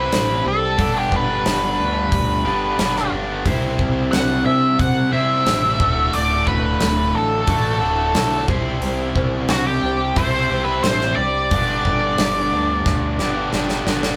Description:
classic rock; 89 BPM; 4/4; straight; A4 = 440 Hz
octave-fuzz lead guitar; melody; 0.0-13.5 s; F#4 to F#5; -23 LUFS; equal; wah, distortion
picked steel-string acoustic guitar; accompaniment; 0.0-14.2 s; C3 to C5; -32 LUFS; equal
distorted electric guitar; riff; 0.0-14.2 s; D2 to C5; -25 LUFS; equal; overdrive
growling fingered electric bass; bass; 0.0-14.2 s; D1 to C3; -28 LUFS; equal; overdrive
big rock drum kit; drums; 0.1-14.2 s; hi-hat, kick drum, snare drum; -25 LUFS; equal
moderate studio reverb, RT60 0.6 s; band playing live in one room; -19 LUFS; mono
0.0-14.2 A section
drum fill 12.9-14.2
0.0 C; 0.8 G; 3.5 C; 5.8 D; 8.5 C; 11.5 G
0.13 | 0.80 1.46 2.13 2.79 | 3.46 4.13 4.80 5.47 | 6.14 6.81 7.48 8.15 | 8.82 9.50 10.17 10.85 | 11.52 12.19 12.87 13.54

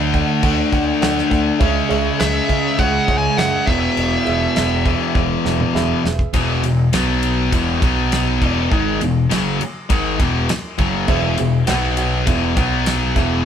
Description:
classic rock; 101 BPM; 4/4; straight; E mixolydian, E major from 6.3 s; A4 = 445 Hz
dark upright piano; accompaniment; 0.0-6.3, 11.1-13.4 s; F#4 to F#5; -26 LUFS; right 7 dB
sludgy distorted guitar; riff; 0.0-13.4 s; E2 to D4; -22 LUFS; right 4 dB; overdrive
tight distorted guitar; riff; 0.0-13.4 s; E2 to D4; -20 LUFS; left 7 dB; distortion
growling picked electric bass; bass; 0.0-13.4 s; E1 to C#3; -23 LUFS; equal; overdrive
damped 70s drum kit; drums; 0.1-13.3 s; crash cymbal, kick drum, ride cymbal, snare drum, toms; -22 LUFS; equal
dark smooth lead guitar; melody; 2.2-5.7 s; E5 to G#5; -22 LUFS; right 1 dB; overdrive
moderate studio reverb, RT60 0.9 s; band playing live in one room; -15 LUFS; side -8 dB against mid
0.0-6.3 A section; 6.3-13.4 B section
drum fill 5.2-6.3
0.0 D; 1.6 C#m; 3.7 E; 6.3 E5; 6.9 B5; 7.5 E5; 7.8 B5; 8.4 E; 11.7 B5; 12.3 E; 12.6 B5; 13.2 E
0.43 1.02 | 1.61 2.20 2.79 3.38 | 3.97 4.56 5.15 5.74 | 6.34 6.93 7.52 8.12 | 8.71 9.30 9.90 10.49 | 11.09 11.68 12.27 12.86

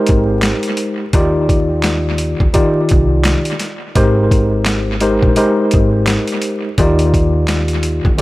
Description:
hip hop, boom-bap hip-hop; 85 BPM; 4/4; swing 57% on 16ths; Ab lydian; A4 = 442 Hz
tine electric piano; accompaniment; 0.0-8.2 s; Eb3 to D5; -15 LUFS; left 1 dB; medium stereo tremolo, cassette tape, high-pass filter, low-pass filter, analog delay
upright bass; bass; 0.1-8.2 s; Ab1 to Eb2; -18 LUFS; equal
boom bap sampler-style drum kit; drums; 0.1-8.2 s; handclaps, hi-hat, kick drum, snare drum; -16 LUFS; equal; analog delay
little or no reverb; echo-heavy mix, vinyl crackle; -12 LUFS; side -18 dB against mid
0.0-8.2 A section
0.0 Abmaj9; 1.1 Ebmaj9; 4.0 Abmaj9; 6.8 Ebmaj9
0.43 | 1.13 1.84 2.55 3.25 | 3.96 4.66 5.37 6.08 | 6.78 7.49 8.19

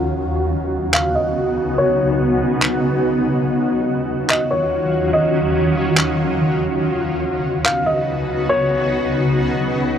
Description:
hip hop, atmospheric cloud-rap; free time; A4 = 440 Hz
granular cloud pad; sustained chords; 0.0-10.0 s; Db2 to Gb4; -18 LUFS; equal; built-in reverb, low-pass filter
felt-muted upright piano; melody; 0.9-8.9 s; Db5 to F5; -21 LUFS; left 1 dB; low-pass filter, tape echo
handclaps; drums; 0.9-7.8 s; -16 LUFS; equal
light reverb, small room ambience; worn, warbling old tape, cassette tape, warbly pitch drift; -16 LUFS; side -8 dB against mid
0.0-10.0 A section
filter sweep 0.0-10.0; break 3.5-4.3
0.1 Db7sus4; 3.5 Ebm7; 6.8 Db7sus4
free time

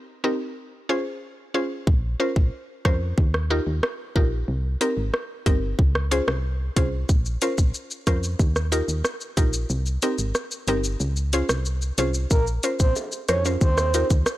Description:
dancehall; 92 BPM; 4/4; straight; A4 = 438 Hz
mallet-like synth pluck; accompaniment; 0.2-14.1 s; C4 to C5; -26 LUFS; equal; chorus
solid FM bass; bass; 1.9-14.2 s; G1 to F2; -25 LUFS; equal
island pop drum kit; drums; 1.9-14.4 s; hi-hat, kick drum, rim click, shaker; -22 LUFS; equal
breathy flute-like synth lead; melody; 12.3-14.1 s; Bb4 to Db5; -26 LUFS; right 2 dB; chorus, tape echo
bongos; percussion; 13.0-14.1 s; -37 LUFS; equal
little or no reverb; dry, gritty hardware recording; -21 LUFS; side -16 dB against mid
0.0-12.3 A section; 12.3-14.4 B section
kick muted 9.7-12.3
0.0 Cm7; 0.6 Dbmaj7; 1.9 Bbmadd9; 3.2 Ebadd9; 4.5 Cm7; 5.8 Dbmaj7; 7.1 Bbmadd9; 8.4 Ebadd9; 9.7 Cm7; 11.0 Dbmaj7; 12.3 Bbmadd9; 13.6 Ebadd9
0.57 1.22 | 1.87 2.52 3.18 3.83 | 4.48 5.13 5.79 6.44 | 7.09 7.74 8.39 9.05 | 9.70 10.35 11.00 11.66 | 12.31 12.96 13.61 14.27

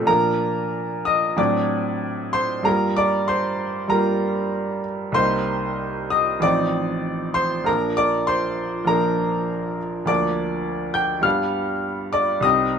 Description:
classical, romantic character piece for solo piano; 87-105 BPM; 4/4; rubato; Bb major; A4 = 437 Hz
clear baby grand piano; solo; 0.0-12.8 s; A1 to G6; -19 LUFS; equal
light reverb; minimal, uncompressed stereo recording, faint mains hum; -19 LUFS; side -7 dB against mid
0.1-12.8 A section
0.1 Bb; 1.4 D7/A; 2.7 Gm7; 5.1 Cm7; 6.4 F7/A; 7.7 Bb; 10.1 Bb/D; 11.2 G7
| 0.07 0.74 1.38 2.01 | 2.65 3.28 3.90 4.53 | 5.14 5.79 6.43 7.04 | 7.67 8.29 8.89 9.50 | 10.09 10.67 11.25 11.84 | 12.43

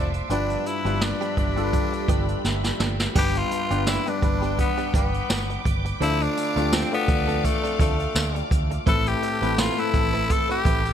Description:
1980s-style pop; 84 BPM; 4/4; swing 55% on 16ths; A4 = 440 Hz
growling tenor saxophone; melody; 0.0-10.9 s; A3 to A4; -27 LUFS; left 2 dB; ping-pong delay
warm baby grand piano; accompaniment; 0.0-10.9 s; G2 to D5; -29 LUFS; left 3 dB
ensemble organ-string; sustained chords; 0.0-10.9 s; G4 to D6; -32 LUFS; equal; phaser, ensemble chorus
direct-recorded clean electric guitar; riff; 0.0-10.9 s; F3 to B4; -34 LUFS; right 7 dB; analog chorus
vintage muted fingered electric bass; bass; 0.0-10.9 s; F1 to D2; -27 LUFS; right 1 dB
jazz brush drum kit; drums; 0.1-10.9 s; crash cymbal, hi-hat, kick drum, snare drum, tambourine; -25 LUFS; right 1 dB; gated reverb
light reverb; bright 1980s-style digital production; -21 LUFS; side -9 dB against mid
0.0-3.2 A section; 3.2-10.9 B section
drum fill 2.4-3.2
0.3 G7; 3.2 G; 6.0 Dm7; 8.9 Amadd9
| 0.30 1.01 1.73 2.44 | 3.16 3.87 4.58 5.30 | 6.01 6.73 7.44 8.16 | 8.87 9.59 10.30

